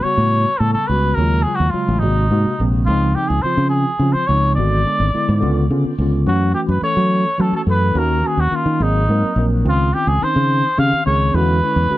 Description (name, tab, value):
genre	jazz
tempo	71 BPM (dotted quarters)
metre	6/8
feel	straight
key	unclear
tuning	A4 = 441 Hz
part	trumpet with cup mute	melody	0.0-12.0 s	D#4 to E#5	-20 LUFS	equal	none
part	tine electric piano	accompaniment	0.0-12.0 s	B#2 to A#4	-22 LUFS	left 1 dB	medium stereo tremolo
part	fingered electric bass	bass	0.0-11.9 s	G#1 to F#3	-16 LUFS	equal	none
room	light reverb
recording	dark, warm production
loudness	-14 LUFS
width	side -16 dB against mid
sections	0.0-12.0 A section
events	none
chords	0.0 A13; 1.2 D#m11; 2.0 G#9; 2.9 C#maj9; 4.6 G#m7b5; 5.4 C#7b9; 6.3 F#m7; 8.0 D#m7; 8.8 G#9; 9.7 C#maj9; 11.3 E13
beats	0.33 | 1.18 2.03 | 2.88 3.73 | 4.57 5.42 | 6.27 7.11 | 7.96 8.80 | 9.65 10.50 | 11.34